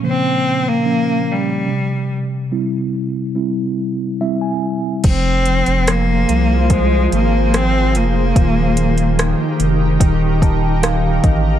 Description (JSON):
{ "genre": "pop ballad", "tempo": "72 BPM", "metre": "4/4", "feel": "straight", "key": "F minor", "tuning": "A4 = 440 Hz", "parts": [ { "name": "mellow tine electric piano", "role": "accompaniment", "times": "0.0-11.6 s", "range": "Bb2 to A5", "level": "-19 LUFS", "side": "equal", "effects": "medium stereo tremolo" }, { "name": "clear cello", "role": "melody", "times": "0.1-9.6 s", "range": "G3 to C4", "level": "-19 LUFS", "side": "equal", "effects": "none" }, { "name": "shimmering ambient pad", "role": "sustained chords", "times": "5.8-11.6 s", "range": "Eb3 to C5", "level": "-22 LUFS", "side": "left 1 dB", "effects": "chorus, built-in reverb" }, { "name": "saturated sub bass", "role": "bass", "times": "5.0-11.6 s", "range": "Eb1 to C2", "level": "-17 LUFS", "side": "equal", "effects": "none" }, { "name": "smooth R&B drum kit", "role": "drums", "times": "5.0-11.4 s", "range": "crash cymbal, hi-hat, kick drum, rim click", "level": "-17 LUFS", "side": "equal", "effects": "overdrive" } ], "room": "light reverb, digital ambience", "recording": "dark, warm production", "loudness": "-14 LUFS", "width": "side -10 dB against mid", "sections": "0.0-5.0 A section; 5.0-11.6 B section", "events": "tine electric piano fill 3.8-5.0, 10.0-11.6", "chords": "0.0 Bbm; 1.7 C; 5.0 Fm; 8.4 Eb" }